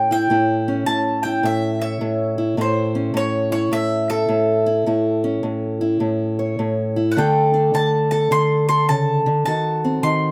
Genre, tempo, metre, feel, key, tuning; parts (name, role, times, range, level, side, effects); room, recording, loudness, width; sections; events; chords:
acoustic country blues, solo or duo; 105 BPM; 4/4; swing 65% on 8ths; A major; A4 = 441 Hz
mandolin; melody; 0.0-10.3 s; C5 to C6; -24 LUFS; equal; plate reverb
fingerpicked steel-string acoustic guitar; accompaniment; 0.0-10.3 s; A2 to C#5; -21 LUFS; equal
moderate studio reverb, RT60 0.6 s; -20 LUFS; mono
0.0-10.3 A section
0.0 A; 7.2 D5; 9.5 D#dim7